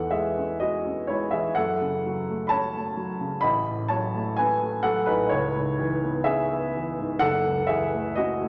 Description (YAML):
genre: classical, romantic nocturne for solo piano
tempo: 63 BPM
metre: 4/4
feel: rubato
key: unclear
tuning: A4 = 440 Hz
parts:
  - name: warm baby grand piano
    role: solo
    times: 0.0-8.5 s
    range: F#1 to B5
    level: -26 LUFS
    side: equal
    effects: none
room: wet scoring stage reverb, RT60 1.8 s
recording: none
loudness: -26 LUFS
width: mono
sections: 0.0-8.5 A section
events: none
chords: 0.0 C#m/E; 1.6 F#m; 3.4 F#m/A; 5.3 C#m7; 7.2 F#m7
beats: 0.60 | 1.56 2.52 3.44 4.39 | 5.32 6.28 7.24 8.18